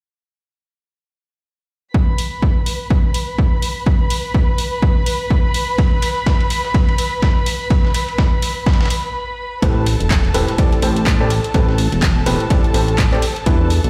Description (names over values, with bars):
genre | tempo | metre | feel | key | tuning
piano house | 125 BPM | 4/4 | swing 58% on 16ths | A minor | A4 = 440 Hz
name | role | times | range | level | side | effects
dark chamber violin section | sustained chords | 1.9-13.9 s | A4 to B5 | -27 LUFS | equal | sidechain pumping
electronic kick drum | drums | 1.9-13.6 s | none | -18 LUFS | equal | overdrive
punchy analog drum machine | drums | 2.2-13.9 s | handclaps, hi-hat | -27 LUFS | equal | overdrive
dusty soul sampler-style drum kit | drums | 5.8-13.8 s | hi-hat, ride cymbal, snare drum | -34 LUFS | equal | high-pass filter on cymbals, high-pass filter on snare, high-pass filter on hats, high-pass filter on room
clear concert grand piano | riff | 9.6-13.7 s | A2 to D5 | -23 LUFS | equal | sidechain pumping, low-pass filter, delay
fat analog bass | bass | 9.6-13.9 s | E1 to E2 | -20 LUFS | equal | sidechain pumping
room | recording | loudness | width
light reverb, digital ambience | played on a big sound system in a bare room, large studio reverb | -17 LUFS | mono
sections
1.9-9.6 A section; 9.6-13.9 B section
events
break 9.1-9.6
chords
1.9 N.C.; 9.6 Am9; 13.2 Em7